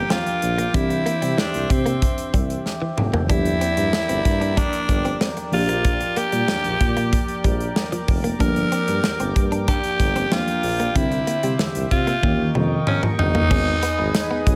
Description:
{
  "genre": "1980s-style pop",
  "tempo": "94 BPM",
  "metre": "4/4",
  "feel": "straight",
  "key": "G dorian",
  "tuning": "A4 = 440 Hz",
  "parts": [
    { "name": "raspy alto saxophone", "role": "melody", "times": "0.0-14.4 s", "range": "C4 to Bb4", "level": "-26 LUFS", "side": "equal", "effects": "delay" },
    { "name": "mellow FM electric piano", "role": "accompaniment", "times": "0.0-14.6 s", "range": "D3 to G#4", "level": "-30 LUFS", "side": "equal", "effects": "chorus, phaser" },
    { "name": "chorused pulse-width pad", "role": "sustained chords", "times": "0.0-14.6 s", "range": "Bb4 to D#6", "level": "-33 LUFS", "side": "equal", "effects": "none" },
    { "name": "direct-recorded clean electric guitar", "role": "riff", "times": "0.0-14.5 s", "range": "E3 to D4", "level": "-32 LUFS", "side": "equal", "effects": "analog chorus, delay" },
    { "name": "warm tuba", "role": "bass", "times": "0.0-14.6 s", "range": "F1 to C3", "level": "-27 LUFS", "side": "equal", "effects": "none" },
    { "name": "modern studio drum kit", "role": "drums", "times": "0.1-14.6 s", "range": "crash cymbal, hi-hat, kick drum, snare drum, tambourine, toms", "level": "-25 LUFS", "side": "equal", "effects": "none" }
  ],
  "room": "light reverb, studio ambience",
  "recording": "none",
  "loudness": "-21 LUFS",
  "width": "mono",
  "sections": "0.0-13.5 A section; 13.5-14.6 B section",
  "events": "drum fill 2.7-3.3, 12.2-13.5",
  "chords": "0.0 Gm7; 0.7 Cadd9; 3.3 Gm7; 5.5 Bb6; 8.4 Gm7; 11.0 Cadd9; 12.2 Eb7; 13.5 G#m"
}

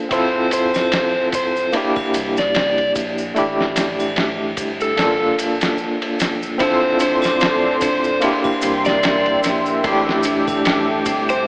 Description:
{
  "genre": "trip hop",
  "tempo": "74 BPM",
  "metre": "4/4",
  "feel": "swing 57% on 16ths",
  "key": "D minor",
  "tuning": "A4 = 438 Hz",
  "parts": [
    { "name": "overdriven tine electric piano", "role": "accompaniment", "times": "0.0-11.5 s", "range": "A3 to A4", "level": "-23 LUFS", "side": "equal", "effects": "tremolo, tape echo" },
    { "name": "overdriven slide guitar", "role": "melody", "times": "0.1-11.5 s", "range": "A4 to D5", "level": "-23 LUFS", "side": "equal", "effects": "tape echo" },
    { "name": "warm sub bass", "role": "bass", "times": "0.1-11.5 s", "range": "D1 to C2", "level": "-40 LUFS", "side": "equal", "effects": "none" },
    { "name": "dusty soul sampler-style drum kit", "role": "drums", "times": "0.1-11.3 s", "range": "kick drum, ride cymbal, snare drum", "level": "-25 LUFS", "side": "equal", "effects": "vintage 12-bit sampler grit, studio reverb" },
    { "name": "maracas and triangle", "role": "percussion", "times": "0.1-11.4 s", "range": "none", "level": "-36 LUFS", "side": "equal", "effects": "none" },
    { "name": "dark analog pad", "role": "sustained chords", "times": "6.9-11.5 s", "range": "A4 to D6", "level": "-24 LUFS", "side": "equal", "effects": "chorus" },
    { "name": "music box", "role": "arpeggios", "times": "6.6-11.4 s", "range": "C4 to D4", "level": "-27 LUFS", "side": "equal", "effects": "digital delay" }
  ],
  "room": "moderate echo chamber reverb, RT60 2.2 s",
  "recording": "AM radio sound",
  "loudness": "-18 LUFS",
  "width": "mono",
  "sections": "0.0-6.6 A section; 6.6-11.5 B section",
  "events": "kick drops out 5.0-6.6",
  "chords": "0.1 Dm7; 1.7 C7; 3.4 A7sus4; 5.0 Gm7; 6.6 Dm7; 8.2 C7; 9.8 A7sus4"
}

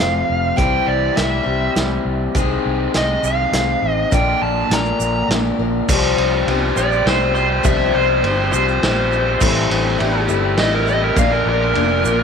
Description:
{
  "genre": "folk rock and heartland rock",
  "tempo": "102 BPM",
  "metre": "3/4",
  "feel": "straight",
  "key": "C mixolydian",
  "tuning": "A4 = 438 Hz",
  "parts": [
    { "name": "dark smooth lead guitar", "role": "melody", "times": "0.0-12.2 s", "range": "Bb4 to Bb5", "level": "-20 LUFS", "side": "right 2 dB", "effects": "overdrive" },
    { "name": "picked steel-string acoustic guitar", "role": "accompaniment", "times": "0.0-12.2 s", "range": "A2 to C5", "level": "-21 LUFS", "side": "left 10 dB", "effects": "none" },
    { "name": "raw garage guitar", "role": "riff", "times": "0.0-12.2 s", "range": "F2 to Ab4", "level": "-23 LUFS", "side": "right 1 dB", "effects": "overdrive, spring reverb" },
    { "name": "fingered electric bass", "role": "bass", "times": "0.0-12.2 s", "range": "F1 to C2", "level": "-22 LUFS", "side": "right 1 dB", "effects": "none" },
    { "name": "vintage drum kit", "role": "drums", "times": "0.6-11.9 s", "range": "crash cymbal, hi-hat, kick drum, ride cymbal, snare drum", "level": "-21 LUFS", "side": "right 1 dB", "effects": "none" },
    { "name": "tube shaker", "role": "percussion", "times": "2.4-12.2 s", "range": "none", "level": "-32 LUFS", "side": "right 20 dB", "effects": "none" }
  ],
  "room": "light reverb, small room ambience",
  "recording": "1960s-style stereo with parts hard left and right",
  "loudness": "-15 LUFS",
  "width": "side -6 dB against mid",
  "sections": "0.0-5.9 A section; 5.9-12.2 B section",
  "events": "lead electric guitar solo 5.9-12.2",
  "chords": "0.0 F; 0.6 C; 2.4 Ab/C; 4.1 Bb; 5.9 Csus4; 9.4 Am7; 11.2 Bb"
}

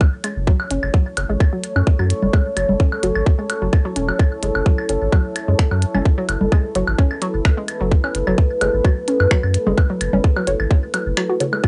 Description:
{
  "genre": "minimal techno",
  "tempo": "129 BPM",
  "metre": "4/4",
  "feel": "straight",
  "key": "F# minor",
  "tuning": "A4 = 440 Hz",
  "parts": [
    { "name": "saturated sub bass", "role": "bass", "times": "0.0-11.1 s", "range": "E1 to F#2", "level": "-23 LUFS", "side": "equal", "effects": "sidechain pumping" },
    { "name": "electronic kick drum", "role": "drums", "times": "0.0-11.7 s", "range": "none", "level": "-17 LUFS", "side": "equal", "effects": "overdrive, small room ambience" },
    { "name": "woodblock, claves and congas", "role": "percussion", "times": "0.0-11.7 s", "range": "none", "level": "-27 LUFS", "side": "equal", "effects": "small room ambience, tape echo" },
    { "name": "deep dark ambient pad", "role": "texture", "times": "0.3-11.7 s", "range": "E4 to C#5", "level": "-26 LUFS", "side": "equal", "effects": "chorus, built-in reverb, sidechain pumping, cassette tape" },
    { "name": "hollow square pluck", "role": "riff", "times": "0.2-11.7 s", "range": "C#3 to F#4", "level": "-28 LUFS", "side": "equal", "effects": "chorus, phaser, sidechain pumping, cassette tape, analog delay" },
    { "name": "minimal click drum kit", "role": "drums", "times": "0.2-11.5 s", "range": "finger snaps, hi-hat", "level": "-28 LUFS", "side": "equal", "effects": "overdrive, small room ambience" },
    { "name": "filtered dub chord stab", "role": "stabs", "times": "1.2-11.5 s", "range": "F#4 to C#5", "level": "-28 LUFS", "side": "equal", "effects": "phaser, cassette tape, tape echo" }
  ],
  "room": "moderate booth ambience, RT60 0.2 s",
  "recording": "home recording on cassette, nothing above 10.6 kHz",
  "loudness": "-18 LUFS",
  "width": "mono",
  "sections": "0.0-11.7 A section",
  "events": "filter sweep on synth stab 0.0-11.7",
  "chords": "0.0 F#m"
}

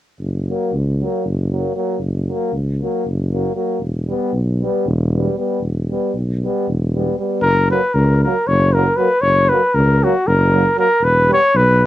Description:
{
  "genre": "balkan folk, Balkan brass band",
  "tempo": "233 BPM (eighths)",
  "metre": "7/8",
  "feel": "straight",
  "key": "unclear",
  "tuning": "A4 = 440 Hz",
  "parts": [
    { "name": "dark tuba", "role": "bass", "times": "0.2-11.8 s", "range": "E1 to C#2", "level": "-17 LUFS", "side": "equal", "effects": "none" },
    { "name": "clear euphonium", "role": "accompaniment", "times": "0.5-11.9 s", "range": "F#3 to G3", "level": "-23 LUFS", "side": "right 7 dB", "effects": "cassette tape" },
    { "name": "warm trombone", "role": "accompaniment", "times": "0.5-11.4 s", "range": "A#3 to B3", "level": "-23 LUFS", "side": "left 7 dB", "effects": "cassette tape" },
    { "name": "mellow trumpet", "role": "melody", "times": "7.4-11.8 s", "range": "F#4 to C#5", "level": "-14 LUFS", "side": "left 1 dB", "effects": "none" }
  ],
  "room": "moderate booth ambience, RT60 0.3 s",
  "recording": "home recording on cassette",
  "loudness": "-15 LUFS",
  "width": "side -14 dB against mid",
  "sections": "0.2-7.4 A section; 7.4-11.9 B section",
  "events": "none",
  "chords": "0.2 F#; 3.8 Em; 7.4 F#; 11.0 E5"
}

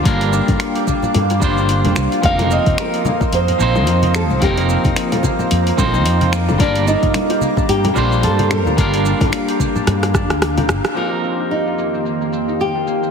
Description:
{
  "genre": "sunset chillout",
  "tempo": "110 BPM",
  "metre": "4/4",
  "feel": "swing 58% on 16ths",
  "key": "unclear",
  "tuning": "A4 = 440 Hz",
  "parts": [
    { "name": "flamenco guitar", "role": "melody", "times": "0.0-13.1 s", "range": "D4 to F5", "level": "-22 LUFS", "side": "right 1 dB", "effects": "tape echo" },
    { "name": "clean electric guitar", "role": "accompaniment", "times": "0.0-13.1 s", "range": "F3 to D5", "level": "-21 LUFS", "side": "right 1 dB", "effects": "auto-pan, tape echo" },
    { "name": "ethereal airy pad", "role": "sustained chords", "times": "0.0-13.1 s", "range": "F2 to Eb6", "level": "-24 LUFS", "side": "right 1 dB", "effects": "ensemble chorus, built-in reverb" },
    { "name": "concert harp", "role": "arpeggios", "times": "0.0-13.1 s", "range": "Bb3 to D5", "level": "-23 LUFS", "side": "left 3 dB", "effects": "low-pass filter, tape echo" },
    { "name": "fretless electric bass", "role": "bass", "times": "0.1-10.8 s", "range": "F1 to G2", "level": "-18 LUFS", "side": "equal", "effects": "wide subtle chorus" },
    { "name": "deep house drum kit", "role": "drums", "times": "0.1-13.1 s", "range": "congas, finger snaps, hi-hat, rim click, shaker", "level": "-22 LUFS", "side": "left 1 dB", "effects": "low-pass filter on hats, low-pass filter on cymbals, low-pass filter on perc, low-pass filter on snare, low-pass filter on room" },
    { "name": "electronic kick drum", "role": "drums", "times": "0.1-10.3 s", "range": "none", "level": "-20 LUFS", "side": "equal", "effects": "none" },
    { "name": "congas and bongos", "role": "percussion", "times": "0.1-10.8 s", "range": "none", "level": "-25 LUFS", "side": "left 3 dB", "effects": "none" }
  ],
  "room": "moderate lush hall reverb, RT60 2.0 s",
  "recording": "heavily compressed radio sound, multiband compression",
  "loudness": "-14 LUFS",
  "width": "side -6 dB against mid",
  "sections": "0.0-11.0 A section; 11.0-13.1 B section",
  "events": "drum fill 9.9-11.0; band accent 10.8; filter sweep on drum 11.0-13.1; filter sweep on harp 11.0-13.1",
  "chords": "0.0 Gm7; 2.2 F7sus4; 6.3 Gm7; 11.0 F7sus4"
}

